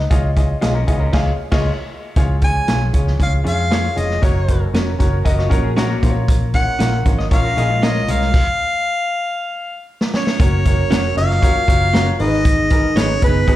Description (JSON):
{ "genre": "uptempo 1960s-style soul", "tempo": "117 BPM", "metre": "4/4", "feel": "straight", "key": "F# major", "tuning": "A4 = 440 Hz", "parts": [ { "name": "warm grand piano", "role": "accompaniment", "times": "0.0-13.6 s", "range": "B3 to E#5", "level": "-25 LUFS", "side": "left 2 dB", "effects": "slapback echo" }, { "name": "vintage muted fingered electric bass", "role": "bass", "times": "0.0-13.6 s", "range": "E#1 to E#2", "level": "-18 LUFS", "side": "equal", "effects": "none" }, { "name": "vintage drum kit", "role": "drums", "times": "0.1-13.6 s", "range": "crash cymbal, hi-hat, kick drum, snare drum", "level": "-18 LUFS", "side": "equal", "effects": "none" }, { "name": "electric guitar through a small old amp", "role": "riff", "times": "0.6-1.7, 5.3-8.3, 13.5-13.6 s", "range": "G#3 to D#5", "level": "-27 LUFS", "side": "left 4 dB", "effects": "slapback echo" }, { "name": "direct-recorded clean electric guitar", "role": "stabs", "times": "0.6-13.1 s", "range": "C#4 to D#5", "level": "-30 LUFS", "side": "right 6 dB", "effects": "spring reverb, slapback echo" }, { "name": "mellow tonewheel organ", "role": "sustained chords", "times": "2.2-13.6 s", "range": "D#3 to A#4", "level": "-30 LUFS", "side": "right 3 dB", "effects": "slow rotary speaker" }, { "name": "mellow harmonica", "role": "melody", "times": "2.4-13.6 s", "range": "B4 to G#5", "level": "-20 LUFS", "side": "left 1 dB", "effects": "slapback echo" }, { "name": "vibraphone with soft mallets", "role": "second line", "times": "10.1-13.6 s", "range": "B3 to E#4", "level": "-24 LUFS", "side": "right 1 dB", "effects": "none" } ], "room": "small room ambience", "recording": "live gig heard through the venue's PA, club reverb", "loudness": "-14 LUFS", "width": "side -14 dB against mid", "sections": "0.0-2.2 A section; 2.2-10.4 B section; 10.4-13.6 C section", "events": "band accent 1.1-2.2; stop 8.3-10.4; drum fill 9.4-10.4", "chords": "0.1 C#add9; 2.2 C#; 4.2 F#; 6.0 A#m; 8.3 N.C.; 10.4 F#; 12.2 G#m" }